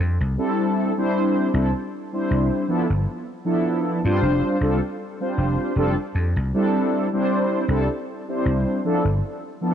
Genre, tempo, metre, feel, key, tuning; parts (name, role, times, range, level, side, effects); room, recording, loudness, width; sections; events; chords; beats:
vaporwave; 78 BPM; 4/4; swing 55% on 16ths; F lydian; A4 = 440 Hz
vintage slap bass; bass; 0.0-9.2 s; F1 to G2; -22 LUFS; equal
mellow synth brass; accompaniment; 0.4-9.7 s; F3 to C5; -21 LUFS; equal; lush chorus, analog delay
moderate lush hall reverb, RT60 2.4 s; cassette tape; -20 LUFS; side -9 dB against mid
0.0-9.7 A section
0.0 F69; 0.8 C69; 2.7 G13; 4.2 F69; 6.9 C69; 8.8 G13
0.38 | 1.15 1.92 2.69 3.46 | 4.23 5.00 5.76 6.54 | 7.30 8.07 8.84 9.61